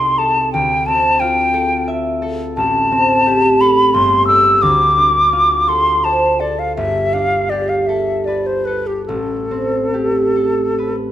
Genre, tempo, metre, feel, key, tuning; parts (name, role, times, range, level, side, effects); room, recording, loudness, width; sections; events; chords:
classical, impressionist duo for flute and harp; 70-92 BPM; 3/4; rubato; A4 = 440 Hz
hollow concert flute; melody; 0.0-11.0 s; G4 to E6; -14 LUFS; left 1 dB
concert harp; accompaniment; 0.0-11.1 s; G1 to E5; -18 LUFS; right 1 dB
moderate recital hall reverb, RT60 1.4 s; close, detailed microphones; -13 LUFS; side -12 dB against mid
0.0-11.1 A section
0.0 Cm6; 0.5 Dm11; 2.6 Am7; 3.9 Gsus24; 4.6 Dm7; 6.8 Gadd9; 9.1 Am9